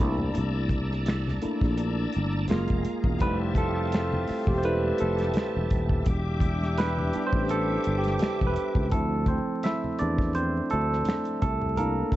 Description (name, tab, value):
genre	R&B, neo-soul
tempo	84 BPM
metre	4/4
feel	swing 54% on 16ths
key	D minor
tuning	A4 = 439 Hz
part	barky tine electric piano	accompaniment	0.0-12.2 s	F3 to E5	-28 LUFS	right 1 dB	overdrive, phaser
part	bright tonewheel organ	sustained chords	0.0-8.9 s	G4 to E6	-37 LUFS	left 1 dB	chorus vibrato, slow rotary speaker
part	sustaining fretless electric bass	bass	0.0-12.0 s	Eb1 to E2	-28 LUFS	equal	none
part	warm soul drum kit	drums	0.0-12.2 s	finger snaps, hi-hat, kick drum, snare drum	-28 LUFS	equal	none
part	congas	percussion	0.2-12.2 s	none	-37 LUFS	left 1 dB	none
part	warm horn section	stabs	3.2-8.5 s	A3 to G4	-34 LUFS	left 3 dB	none
room	light reverb, studio reverb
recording	vinyl crackle, nothing above 7.9 kHz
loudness	-24 LUFS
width	side -15 dB against mid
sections	0.0-8.9 A section; 8.9-12.2 B section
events	tine electric piano solo 0.0-8.9, 8.9-12.2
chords	0.0 C13; 2.5 F#maj9; 3.2 Fmaj9; 6.1 Em7; 8.9 Dm9; 11.4 C13